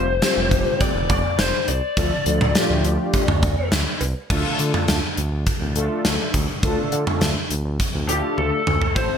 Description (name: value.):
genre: synth-pop.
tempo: 103 BPM.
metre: 4/4.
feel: straight.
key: unclear.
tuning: A4 = 440 Hz.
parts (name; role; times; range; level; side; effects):
lead guitar through a small cranked amp; melody; 0.0-3.7, 8.1-9.2 s; G4 to D5; -23 LUFS; left 4 dB; overdrive.
mellow synth brass; accompaniment; 0.0-9.2 s; F3 to A4; -25 LUFS; left 1 dB; chorus.
smooth synth bass; bass; 0.0-9.1 s; F1 to D3; -24 LUFS; equal; none.
gated 80s drum kit; drums; 0.2-9.1 s; cowbell, crash cymbal, hi-hat, kick drum, snare drum, toms; -21 LUFS; equal; none.
room: light reverb, small room ambience.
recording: bright 1980s-style digital production.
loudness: -18 LUFS.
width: side -8 dB against mid.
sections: 0.0-4.3 A section; 4.3-9.0 B section.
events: drum fill 8.4-9.0.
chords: 0.0 Fadd9; 2.0 Dm.